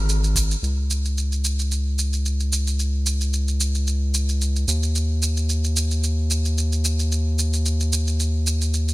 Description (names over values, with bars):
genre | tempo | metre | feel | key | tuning
sunset chillout | 111 BPM | 4/4 | swing 54% on 16ths | unclear | A4 = 438 Hz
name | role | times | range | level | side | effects
round analog bass | bass | 0.0-8.9 s | Ab1 to Eb2 | -20 LUFS | equal | none
electronic shaker and hi-hat | drums | 0.1-8.9 s | none | -26 LUFS | right 2 dB | overdrive, studio ambience
electronic kick drum | drums | 0.4-0.5 s | none | -29 LUFS | equal | none
room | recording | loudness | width
little or no reverb | bright 1980s-style digital production | -20 LUFS | side -19 dB against mid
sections
0.6-8.9 A section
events
none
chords
none